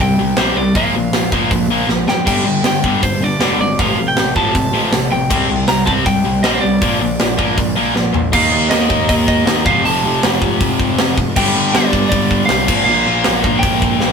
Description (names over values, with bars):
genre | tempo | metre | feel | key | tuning
punk rock | 158 BPM | 4/4 | straight | unclear | A4 = 440 Hz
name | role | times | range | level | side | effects
lightly driven lead guitar | melody | 0.0-14.1 s | C5 to Bb5 | -19 LUFS | equal | none
distorted electric guitar | riff | 0.0-14.1 s | F2 to Eb4 | -17 LUFS | left 1 dB | overdrive
fuzz picked electric bass | bass | 0.0-14.1 s | F1 to Eb2 | -20 LUFS | equal | overdrive
tight metal drum kit | drums | 0.4-14.1 s | crash cymbal, hi-hat, kick drum, snare drum, toms | -17 LUFS | equal | none
room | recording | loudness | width
moderate small room reverb, RT60 0.6 s | rough rehearsal-room recording | -12 LUFS | side -6 dB against mid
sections
0.0-8.3 A section; 8.3-14.1 B section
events
drum fill 1.9-2.3, 8.0-8.3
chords
0.0 C5; 0.8 Bb5; 2.3 G5; 3.8 F/A; 5.3 C5; 6.8 Bb; 8.3 Eb5; 9.7 F; 11.4 G5; 12.7 Bb5